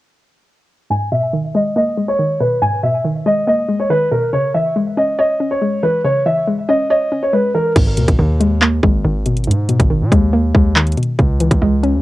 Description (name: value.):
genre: hip hop, drill.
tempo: 140 BPM.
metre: 4/4.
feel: half-time.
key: G# minor.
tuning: A4 = 439 Hz.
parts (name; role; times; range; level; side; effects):
dark concert grand piano; melody; 0.9-7.7 s; A#4 to G#5; -16 LUFS; equal; low-pass filter, cassette tape, analog delay.
hollow square pluck; accompaniment; 0.9-12.0 s; G#2 to C#5; -18 LUFS; left 1 dB; chorus, low-pass filter, cassette tape.
hard-hitting 808-style bass; bass; 7.8-12.0 s; G#1 to B2; -17 LUFS; equal; none.
drill drum kit; drums; 7.8-11.9 s; crash cymbal, handclaps, hi-hat, kick drum; -15 LUFS; equal; cassette tape.
room: little or no reverb.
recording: home recording on cassette.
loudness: -13 LUFS.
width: side -16 dB against mid.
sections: 0.9-7.8 A section; 7.8-12.0 B section.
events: filter sweep 0.9-7.8.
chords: 0.9 G#madd9; 4.3 C#m; 7.8 G#madd9; 11.2 C#m.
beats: | 0.90 1.33 1.76 2.19 | 2.62 3.05 3.48 3.90 | 4.33 4.76 5.19 5.62 | 6.05 6.47 6.90 7.33 | 7.76 8.19 8.62 9.05 | 9.47 9.90 10.33 10.76 | 11.19 11.62.